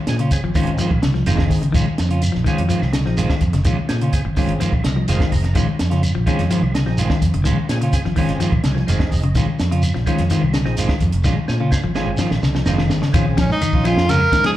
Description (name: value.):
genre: afrobeat.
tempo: 126 BPM.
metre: 4/4.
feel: straight.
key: Bb minor.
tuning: A4 = 440 Hz.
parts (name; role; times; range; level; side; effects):
percussive tonewheel organ; accompaniment; 0.1-14.6 s; C4 to Bb5; -30 LUFS; equal; slow rotary speaker, chorus vibrato, slapback echo.
electric guitar at the edge of break-up; stabs; 0.1-14.4 s; Eb3 to F4; -25 LUFS; right 4 dB; spring reverb, slapback echo.
fingered electric bass; bass; 0.1-14.6 s; F1 to Bb2; -20 LUFS; equal; none.
compact cocktail drum kit; drums; 0.1-14.5 s; hi-hat, kick drum, ride cymbal, snare drum; -21 LUFS; equal; none.
shekere; percussion; 0.1-14.4 s; none; -26 LUFS; equal; none.
semi-hollow electric guitar; arpeggios; 0.2-14.5 s; Db3 to F3; -23 LUFS; left 4 dB; none.
claves; percussion; 0.3-14.3 s; none; -38 LUFS; equal; slapback echo.
breathy tenor saxophone; melody; 13.4-14.5 s; Db4 to Bb4; -17 LUFS; right 1 dB; slapback echo.
room: light reverb.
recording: live gig heard through the venue's PA, club reverb.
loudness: -16 LUFS.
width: side -14 dB against mid.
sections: 0.0-13.1 A section; 13.1-14.6 B section.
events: tonewheel organ fill 4.6-5.6, 8.4-9.4; drum fill 11.3-13.1.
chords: 0.0 Bbm7; 0.8 Fm7; 1.7 Bbm7; 2.7 Fm7; 3.7 Bbm7; 4.6 Fm7; 5.6 Bbm7; 6.5 Fm7; 7.5 Bbm7; 8.4 Fm7; 9.4 Bbm7; 10.3 Fm7; 11.3 Bbm7; 12.2 Fm7; 13.1 Bbm7.